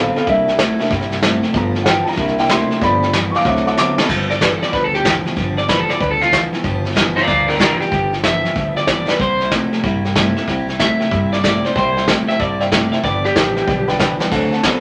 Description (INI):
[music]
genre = rockabilly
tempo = 188 BPM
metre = 4/4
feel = swing 65% on 8ths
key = G mixolydian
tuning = A4 = 440 Hz
[part]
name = dark upright piano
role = accompaniment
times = 0.0-4.1, 11.8-14.8 s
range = F#3 to D6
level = -21 LUFS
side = equal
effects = none
[part]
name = picked steel-string acoustic guitar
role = accompaniment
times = 0.0-14.8 s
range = G2 to A4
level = -27 LUFS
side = equal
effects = none
[part]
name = electric guitar through a small old amp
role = riff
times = 0.0-14.8 s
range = G2 to B3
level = -25 LUFS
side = equal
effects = none
[part]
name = upright bass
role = bass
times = 0.0-14.8 s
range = G1 to G2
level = -28 LUFS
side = equal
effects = none
[part]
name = vintage brush drum kit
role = drums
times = 0.2-14.7 s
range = crash cymbal, hi-hat, kick drum, snare drum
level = -21 LUFS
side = equal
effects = none
[part]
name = electric guitar through a small old amp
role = melody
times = 4.3-13.9 s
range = D4 to E5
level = -20 LUFS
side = equal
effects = none
[sound]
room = wet club reverb, RT60 0.7 s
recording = none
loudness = -16 LUFS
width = mono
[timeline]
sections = 0.0-4.1 A section; 4.1-14.8 B section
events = upright piano solo 0.0-4.1; drum fill 3.8-4.1, 9.0, 14.2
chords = 0.3 C7; 1.6 G7; 2.2 C7; 2.8 G7; 3.5 D7; 4.1 G7; 9.2 C7; 13.0 G7